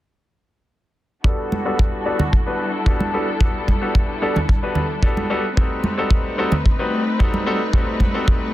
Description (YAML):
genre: nu-disco, nu disco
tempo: 111 BPM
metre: 4/4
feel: straight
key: E minor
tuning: A4 = 440 Hz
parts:
  - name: bright grand piano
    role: accompaniment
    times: 1.2-8.5 s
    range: G3 to B4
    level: -23 LUFS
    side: left 1 dB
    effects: sidechain pumping, low-pass filter, dub echo
  - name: dark studio string section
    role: sustained chords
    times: 1.2-8.5 s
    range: G3 to B4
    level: -26 LUFS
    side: left 1 dB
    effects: sidechain pumping, low-pass filter
  - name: kick drum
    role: drums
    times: 1.2-8.4 s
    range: none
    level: -17 LUFS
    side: equal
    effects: none
  - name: congas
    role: percussion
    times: 1.5-8.1 s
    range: none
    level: -24 LUFS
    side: right 2 dB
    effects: none
room: light reverb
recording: dense, heavily limited modern master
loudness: -17 LUFS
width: side -15 dB against mid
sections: 1.2-8.5 A section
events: filter sweep on grand piano 1.2-8.5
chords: 1.2 Em11; 5.6 B7b9b13